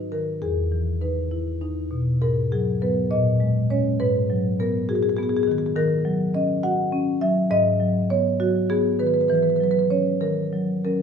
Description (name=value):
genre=classical, contemporary piece for solo marimba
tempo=67 BPM (dotted quarters)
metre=6/8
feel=rubato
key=G# minor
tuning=A4 = 440 Hz
part: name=marimba with medium mallets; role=solo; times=0.0-11.0 s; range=E2 to F#5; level=-20 LUFS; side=equal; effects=none
room=moderate recital hall reverb, RT60 1.5 s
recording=studio ambience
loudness=-20 LUFS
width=side -7 dB against mid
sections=0.0-11.0 A section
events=none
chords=0.4 Emaj7; 2.2 G#m7; 3.1 A#m7; 4.0 G#m7; 5.8 D#m7; 7.5 G#m7; 9.3 Esus2; 10.2 D#m7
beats=| 0.42 1.31 | 2.21 3.10 | 3.99 4.88 | 5.75 6.63 | 7.50 8.39 | 9.29 10.20